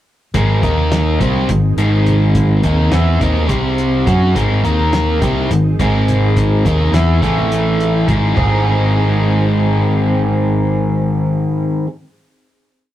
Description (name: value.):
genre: psychedelic rock.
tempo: 209 BPM (eighths).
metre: 7/8.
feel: straight.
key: unclear.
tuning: A4 = 440 Hz.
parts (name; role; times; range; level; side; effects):
soft string machine; sustained chords; 0.6-11.5 s; A3 to E5; -23 LUFS; equal; ensemble chorus.
biting overdriven guitar; riff; 0.3-11.9 s; G#2 to G#4; -15 LUFS; equal; none.
fingered electric bass; bass; 0.3-11.5 s; G#1 to F#2; -16 LUFS; equal; none.
cloth-damped thuddy drum kit; drums; 0.3-8.5 s; hi-hat, kick drum, snare drum, toms; -20 LUFS; equal; none.
congas; percussion; 0.3-8.6 s; none; -29 LUFS; equal; none.
room: moderate studio reverb, RT60 0.5 s.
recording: rough rehearsal-room recording.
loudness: -12 LUFS.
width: side -13 dB against mid.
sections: 0.3-8.4 groove; 8.4-12.4 final chord.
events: none.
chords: 0.3 G#; 0.6 D#5; 1.2 G#; 3.5 C5; 4.1 G#; 4.6 D#5; 5.2 G#; 7.2 A5; 8.1 G#.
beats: | 0.34 0.62 0.91 1.20 1.49 1.77 2.06 | 2.35 2.63 2.92 3.21 3.50 3.78 4.07 | 4.35 4.64 4.93 5.21 5.50 5.79 6.07 | 6.36 6.64 6.93 7.22 7.50 7.79 8.08 | 8.37 8.65 8.94 9.23 9.51 9.80 10.09 | 10.38 10.66 10.95 11.24 11.53 11.81.